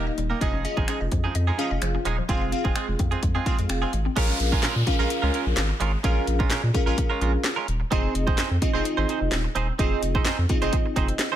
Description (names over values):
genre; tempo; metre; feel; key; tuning
dance-pop; 128 BPM; 4/4; straight; unclear; A4 = 440 Hz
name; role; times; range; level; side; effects
glassy digital keys; accompaniment; 0.0-11.3 s; Bb3 to F5; -29 LUFS; equal; chorus, sidechain pumping
direct-recorded clean electric guitar; riff; 0.0-11.4 s; F3 to C5; -29 LUFS; right 7 dB; analog chorus
saturated sub bass; bass; 0.0-11.1 s; Eb1 to Bb2; -26 LUFS; equal; sidechain pumping
mallet-like synth pluck; arpeggios; 0.1-4.1 s; F3 to F5; -34 LUFS; left 4 dB; chorus, sidechain pumping, ping-pong delay
house drum kit; drums; 0.2-11.3 s; crash cymbal, finger snaps, handclaps, hi-hat, kick drum, snare drum; -25 LUFS; equal; none
downlifter; sound effects; 4.2-7.9 s; none; -33 LUFS; equal; none
room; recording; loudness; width
little or no reverb; none; -21 LUFS; side -11 dB against mid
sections
0.0-4.2 A section; 4.2-11.4 B section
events
none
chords
0.4 Dbadd9/F; 2.3 Fm; 4.2 Bbm7; 7.9 Fm7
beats
| 0.41 0.88 1.35 1.82 | 2.29 2.76 3.23 3.70 | 4.17 4.63 5.10 5.57 | 6.04 6.51 6.98 7.45 | 7.92 8.38 8.85 9.32 | 9.79 10.26 10.73 11.20